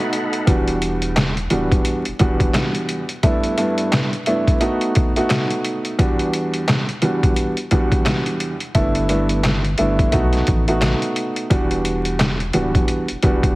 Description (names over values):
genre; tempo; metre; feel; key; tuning
hip hop, boom-bap hip-hop; 87 BPM; 4/4; swing 60% on 16ths; E minor; A4 = 439 Hz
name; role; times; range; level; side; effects
dark upright piano; accompaniment; 0.0-13.6 s; E2 to F#4; -20 LUFS; right 1 dB; cassette tape, high-pass filter, low-pass filter
bright tonewheel organ; sustained chords; 0.0-0.5 s; D#4 to B5; -27 LUFS; equal; fast rotary speaker, high-pass filter, low-pass filter
trip hop sampler-style drum kit; drums; 0.1-13.6 s; handclaps, hi-hat, kick drum, snare drum; -19 LUFS; equal; none
soft dub sub bass; bass; 0.5-2.5, 8.8-13.5 s; D1 to B1; -24 LUFS; equal; none
room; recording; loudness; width
light reverb; heavily compressed radio sound, multiband compression, vinyl crackle; -16 LUFS; side -20 dB against mid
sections
0.5-13.6 A section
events
none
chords
0.5 Em7; 3.2 G69; 4.6 B7; 6.0 Em7; 8.8 G69; 10.1 B7; 11.5 Em7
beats
| 0.47 1.16 1.85 2.54 | 3.23 3.92 4.61 5.30 | 5.99 6.68 7.37 8.06 | 8.75 9.44 10.13 10.82 | 11.51 12.20 12.89